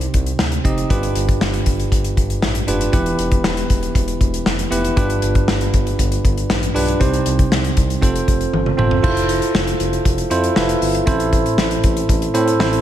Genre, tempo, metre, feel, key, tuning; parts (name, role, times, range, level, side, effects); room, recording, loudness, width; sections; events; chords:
1980s-style pop; 118 BPM; 4/4; straight; A4 = 443 Hz
bell-like tine electric piano; accompaniment; 0.0-12.8 s; G2 to G5; -19 LUFS; right 2 dB; slapback echo
smooth synth bass; bass; 0.0-12.8 s; E1 to A2; -23 LUFS; equal
modern studio drum kit; drums; 0.0-12.8 s; crash cymbal, hi-hat, kick drum, snare drum, toms; -19 LUFS; left 1 dB
light reverb; -15 LUFS; side -11 dB against mid
0.0-9.0 A section; 9.0-12.8 B section
drum fill 8.5-9.0; tine electric piano fill 12.1-12.8
0.0 Cm; 0.9 G7; 2.9 Em; 5.0 G7; 7.0 Cm; 8.0 F; 9.0 Fmaj7; 11.1 Am